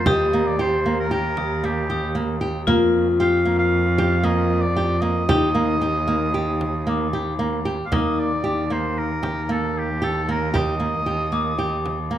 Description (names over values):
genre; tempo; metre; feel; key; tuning
contemporary instrumental, chamber music in an uneven meter; 114 BPM; 5/4; straight; Eb lydian; A4 = 440 Hz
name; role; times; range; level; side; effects
warm oboe; melody; 0.0-12.1 s; G4 to F5; -26 LUFS; equal; none
vibraphone with hard mallets; second line; 0.0-12.2 s; Eb4 to G4; -24 LUFS; left 4 dB; none
warm cello; bass; 0.0-12.2 s; Eb2 to F2; -26 LUFS; right 2 dB; none
glockenspiel with hard plastic mallets; texture; 0.0-2.6, 6.9-12.0 s; D6 to A6; -33 LUFS; left 5 dB; none
flamenco guitar; arpeggios; 0.1-12.2 s; Bb3 to G4; -25 LUFS; right 2 dB; none
frame drum; percussion; 0.1-12.1 s; none; -26 LUFS; right 2 dB; none
room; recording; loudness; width
moderate recital hall reverb, RT60 1.5 s; none; -19 LUFS; side -11 dB against mid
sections
0.0-7.9 A section; 7.9-12.2 B section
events
none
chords
0.1 Eb; 2.7 Fsus24; 5.3 Ebmaj7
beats
| 0.07 0.59 1.11 1.64 2.16 | 2.68 3.21 3.73 4.25 4.78 | 5.30 5.82 6.35 6.87 7.39 | 7.92 8.44 8.97 9.49 10.02 | 10.54 11.07 11.59 12.12